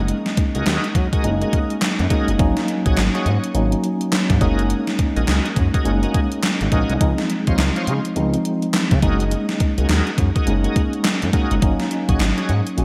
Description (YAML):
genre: R&B, new jack swing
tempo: 104 BPM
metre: 4/4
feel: swing 61% on 16ths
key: unclear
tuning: A4 = 439 Hz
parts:
  - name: mellow tine electric piano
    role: accompaniment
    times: 0.0-12.8 s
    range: F3 to Gb4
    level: -24 LUFS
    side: equal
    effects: none
  - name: smooth gliding synth bass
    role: bass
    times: 0.0-12.8 s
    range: Gb1 to Db3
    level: -23 LUFS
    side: equal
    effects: none
  - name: gated 80s digital drum machine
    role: drums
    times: 0.1-12.8 s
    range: handclaps, hi-hat, kick drum, snare drum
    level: -23 LUFS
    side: equal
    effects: gated reverb, gated reverb snare, overdrive
  - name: bright tonewheel organ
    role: stabs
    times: 0.5-12.6 s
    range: F4 to Eb5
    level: -31 LUFS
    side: equal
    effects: overdrive, chorus vibrato, slow rotary speaker
room: moderate lush hall reverb, RT60 1.9 s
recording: bright 1980s-style digital production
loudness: -19 LUFS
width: mono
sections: 0.0-12.8 A section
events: none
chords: 0.0 Gb69; 2.4 Ab7sus4; 4.4 Gb69; 7.0 Dbmaj9; 9.0 Gb69; 11.6 Ab7sus4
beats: | 0.08 0.66 1.24 1.81 | 2.39 2.97 3.55 4.12 | 4.70 5.28 5.85 6.43 | 7.01 7.58 8.16 8.74 | 9.31 9.89 10.47 11.05 | 11.62 12.20 12.78